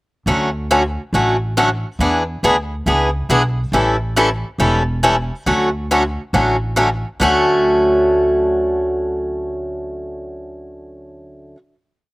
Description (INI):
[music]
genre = acoustic string swing (jazz manouche)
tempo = 138 BPM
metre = 4/4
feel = swing 64% on 8ths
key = D major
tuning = A4 = 440 Hz
[part]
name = picked swing-style acoustic guitar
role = accompaniment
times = 0.3-11.6 s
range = D3 to A4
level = -16 LUFS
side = equal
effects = slapback echo
[part]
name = upright bass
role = bass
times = 0.3-11.5 s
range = E1 to E2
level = -22 LUFS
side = equal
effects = none
[sound]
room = little or no reverb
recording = recorded outdoors, with no room sound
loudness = -15 LUFS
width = side -21 dB against mid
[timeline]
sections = 0.3-7.2 A section; 7.2-10.7 final chord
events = none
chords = 0.3 Dmaj7; 2.0 E7; 3.7 A7; 5.5 Dmaj7